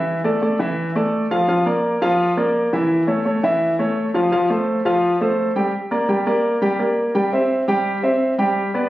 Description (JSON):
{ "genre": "latin", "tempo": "170 BPM", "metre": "4/4", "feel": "straight", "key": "unclear", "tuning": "A4 = 442 Hz", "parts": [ { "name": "warm grand piano", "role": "solo", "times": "0.0-8.9 s", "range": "E3 to G5", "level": "-17 LUFS", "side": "equal", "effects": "none" } ], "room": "moderate studio reverb, RT60 0.6 s", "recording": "recorded on a phone in the room, studio reverb, nothing above 10.8 kHz", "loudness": "-17 LUFS", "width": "side -15 dB against mid", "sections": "0.0-5.7 A section; 5.7-8.9 B section", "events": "none", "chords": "0.1 Asus4; 1.5 Bb; 2.9 A; 4.3 Fadd9; 5.7 Gm; 7.2 C", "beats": "| 0.07 0.42 0.78 1.13 | 1.49 1.84 2.20 2.55 | 2.90 3.26 3.61 3.97 | 4.32 4.67 5.03 5.38 | 5.74 6.09 6.44 6.80 | 7.15 7.50 7.86 8.21 | 8.57" }